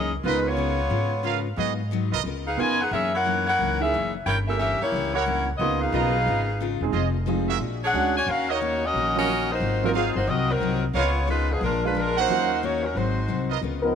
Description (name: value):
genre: jazz, big band swing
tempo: 179 BPM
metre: 4/4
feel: swing 64% on 8ths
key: Db mixolydian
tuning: A4 = 442 Hz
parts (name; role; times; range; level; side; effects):
- bright saxophone section; melody; 0.0-13.5 s; F3 to Ab5; -24 LUFS; left 1 dB; none
- picked steel-string acoustic guitar; accompaniment; 0.0-13.9 s; Gb2 to Bb4; -31 LUFS; left 12 dB; none
- upright bass; bass; 0.0-13.9 s; Fb1 to Ab2; -28 LUFS; equal; none
- warm grand piano; accompaniment; 0.2-12.5 s; Gb3 to Bb4; -30 LUFS; right 12 dB; none
- clear trumpet section; stabs; 0.2-2.2, 5.1-13.6 s; Db4 to Bb5; -30 LUFS; right 12 dB; none
- dark trombone section; sustained chords; 13.8-13.9 s; F3 to Bb4; -21 LUFS; left 3 dB; none
room: light reverb, small room ambience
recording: 1960s-style stereo with parts hard left and right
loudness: -22 LUFS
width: side -7 dB against mid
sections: 0.0-13.6 A section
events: none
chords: 0.2 Db13; 1.6 Abm7; 2.2 Db13; 2.9 Gb13; 4.3 Gdim7; 5.6 Db13; 6.9 Fm7; 7.6 Bb7alt; 8.3 Ebm7; 9.6 Ab13; 10.9 Db13; 11.6 Bb7; 12.3 Ebm7; 13.0 Ab7